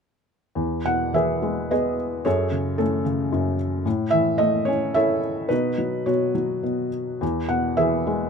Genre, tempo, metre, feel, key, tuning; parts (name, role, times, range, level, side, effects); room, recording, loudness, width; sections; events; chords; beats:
classical, lyrical solo piano; 103-113 BPM; 3/4; rubato; E major; A4 = 440 Hz
felt-muted upright piano; solo; 0.6-8.3 s; E2 to F#5; -21 LUFS; equal
light reverb; close, detailed microphones; -21 LUFS; side -6 dB against mid
0.6-8.3 A section
0.6 E; 2.3 F#madd9; 3.9 A; 5.5 Badd9; 7.2 E
| 0.57 1.15 1.71 | 2.25 2.79 3.32 | 3.86 4.40 4.95 | 5.51 6.07 6.65 | 7.22 7.78